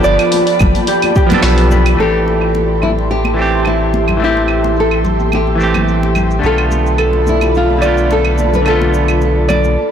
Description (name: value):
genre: sunset chillout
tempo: 108 BPM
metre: 4/4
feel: swing 54% on 16ths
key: A minor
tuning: A4 = 440 Hz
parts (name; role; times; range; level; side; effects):
- semi-hollow electric guitar; accompaniment; 0.0-9.8 s; D3 to A4; -17 LUFS; moving between left 4 dB and right 5 dB; auto-pan, ping-pong delay, shimmer reverb
- ethereal airy pad; sustained chords; 0.0-9.7 s; F4 to C6; -19 LUFS; equal; ensemble chorus, built-in reverb, shimmer reverb
- concert harp; arpeggios; 0.0-9.9 s; G4 to D5; -18 LUFS; right 2 dB; ping-pong delay, shimmer reverb
- deep house drum kit; drums; 0.0-9.7 s; claves, hi-hat, shaker, snare drum; -22 LUFS; right 3 dB; low-pass filter on hats, low-pass filter on perc, low-pass filter on snare
- round analog bass; bass; 0.1-9.8 s; G1 to B1; -16 LUFS; equal; none
- congas; percussion; 0.3-9.8 s; none; -22 LUFS; left 2 dB; none
- electronic kick drum; drums; 0.6-1.3 s; none; -13 LUFS; equal; none
- nylon-string guitar; melody; 2.0-9.8 s; E4 to B4; -18 LUFS; left 2 dB; digital delay, shimmer reverb
room: moderate plate reverb, RT60 1.6 s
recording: blown-out, overdriven recording, overdrive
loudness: -11 LUFS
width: side -8 dB against mid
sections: 0.0-2.0 A section; 2.0-9.9 B section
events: none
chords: 0.0 G7; 2.0 Am7; 6.4 Bm7b5